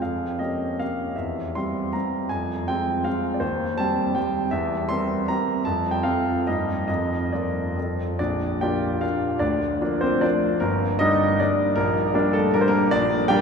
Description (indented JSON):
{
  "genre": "classical, romantic triple-time dance for piano with dotted rhythms",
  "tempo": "128-174 BPM",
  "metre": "3/4",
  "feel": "rubato",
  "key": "F minor, Bb major from 3.4 s",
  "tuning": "A4 = 439 Hz",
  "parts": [
    { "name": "warm concert grand piano", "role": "solo", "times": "0.0-13.4 s", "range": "G1 to C6", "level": "-21 LUFS", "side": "equal", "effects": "none" }
  ],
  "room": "wet cathedral reverb, RT60 6.8 s",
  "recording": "recorded in a church or concert hall",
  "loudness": "-21 LUFS",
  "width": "side -6 dB against mid",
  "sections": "0.0-8.2 A section; 8.2-13.4 B section",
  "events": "none",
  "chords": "0.0 Gm7b5/F; 1.2 C/E; 2.3 Fm; 3.4 Cm/Eb; 4.5 C7/E; 5.7 F; 6.5 Eb/G; 6.9 Bb/F; 7.8 F; 8.2 Bb; 9.4 Bb/D; 10.6 Gm; 11.8 Gm/Bb",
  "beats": "| 0.03 0.41 0.81 | 1.18 1.57 1.95 | 2.31 2.69 3.06 | 3.42 3.79 4.17 | 4.52 4.89 5.28 | 5.66 6.05 6.47 | 6.88 7.32 7.77 | 8.19 8.61 9.03 | 9.42 9.83 10.24 | 10.62 11.01 11.40 | 11.77 12.14 12.54 | 12.92 13.30"
}